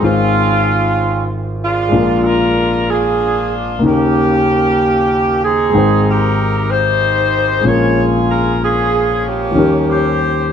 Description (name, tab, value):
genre	gospel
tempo	63 BPM (dotted quarters)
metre	6/8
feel	straight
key	unclear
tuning	A4 = 439 Hz
part	clear saxophone section	melody	0.0-10.5 s	Ab3 to Db5	-15 LUFS	right 1 dB	none
part	dark concert grand piano	accompaniment	0.0-10.5 s	Ab1 to G5	-15 LUFS	left 2 dB	none
room	moderate echo chamber reverb, RT60 1.8 s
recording	none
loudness	-12 LUFS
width	side -8 dB against mid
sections	0.0-10.5 A section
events	none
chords	0.0 Dbmaj7/Ab; 1.9 Bb7; 3.8 Eb7; 5.7 Abmaj7; 7.6 Bbm7; 9.6 Eb7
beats	| 0.03 0.98 | 1.94 2.89 | 3.84 4.79 | 5.75 6.70 | 7.65 8.60 | 9.55 10.50